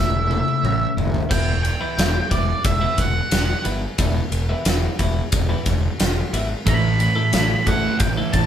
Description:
quiet-loud alternative rock; 90 BPM; 4/4; straight; A4 = 442 Hz
octave-fuzz lead guitar; melody; 0.0-8.5 s; D5 to B5; -24 LUFS; right 2 dB; distortion
twelve-string electric guitar; arpeggios; 0.0-8.4 s; A2 to A4; -28 LUFS; left 2 dB
fuzz fingered electric bass; bass; 0.0-8.5 s; E1 to A1; -23 LUFS; equal; overdrive
huge arena drum kit; drums; 0.3-8.5 s; crash cymbal, kick drum, ride cymbal, snare drum, toms; -22 LUFS; left 1 dB
thick fuzz guitar; riff; 6.7-8.5 s; A2 to A3; -22 LUFS; right 4 dB; distortion
moderate studio reverb, RT60 0.8 s; band playing live in one room; -18 LUFS; side -9 dB against mid
0.0-1.3 A section; 1.3-8.5 B section
drum fill 0.0-1.3
0.0 A; 1.3 Em; 6.7 Asus2
0.64 | 1.31 1.98 2.65 3.32 | 3.99 4.66 5.33 6.00 | 6.67 7.33 8.01

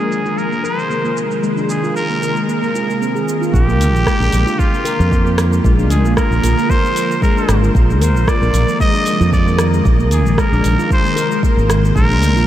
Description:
organic downtempo; 114 BPM; 4/4; swing 54% on 16ths; Bb mixolydian; A4 = 438 Hz
trumpet with straight mute; melody; 0.0-12.5 s; F4 to Eb5; -20 LUFS; equal; tape echo
ethereal airy pad; sustained chords; 0.0-12.5 s; C3 to Bb4; -22 LUFS; equal; ensemble chorus, built-in reverb, phaser, sidechain pumping
handpan; arpeggios; 0.0-12.5 s; Ab3 to Bb4; -20 LUFS; left 1 dB; tape echo
deep house drum kit; drums; 0.0-12.5 s; cabasa, hi-hat, rim click; -26 LUFS; right 1 dB
mellow fretless electric bass; bass; 3.5-12.5 s; Ab1 to F2; -14 LUFS; equal; sidechain pumping
electronic kick drum; drums; 3.5-12.1 s; -16 LUFS; equal
moderate huge ambient reverb, RT60 8.1 s; dreamy mix soaked in reverb, low-pass filter; -12 LUFS; side -12 dB against mid
0.0-3.5 A section; 3.5-12.5 B section
filter sweep on ambient pad 0.0-3.5
0.0 Fm7; 3.5 Bb; 7.7 Fm7/Bb; 9.9 Abadd9/Bb; 12.0 Bb
0.38 0.91 | 1.43 1.96 2.49 3.01 | 3.54 4.07 4.59 5.12 | 5.64 6.17 6.70 7.22 | 7.75 8.28 8.80 9.33 | 9.85 10.38 10.91 11.43 | 11.96

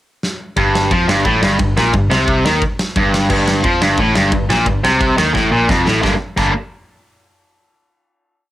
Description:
punk rock; 176 BPM; 4/4; straight; G minor; A4 = 439 Hz
big rock drum kit; drums; 0.2-6.5 s; crash cymbal, kick drum, ride cymbal, snare drum; -19 LUFS; equal; cassette tape
distorted electric guitar; riff; 0.6-6.5 s; F2 to D4; -14 LUFS; equal; overdrive
picked electric bass; bass; 0.6-6.5 s; F1 to F2; -21 LUFS; equal
small room ambience; home recording on cassette; -12 LUFS; side -14 dB against mid
0.0-0.6 pickup bar; 0.6-6.0 riff; 6.0-7.4 final chord
drum fill 0.2-0.6, 5.4-6.0
0.0 N.C.; 0.6 Gm
0.23 | 0.57 0.91 1.25 1.60 | 1.94 2.28 2.62 2.96 | 3.30 3.65 3.99 4.33 | 4.67 5.01 5.35 5.69 | 6.03 6.38

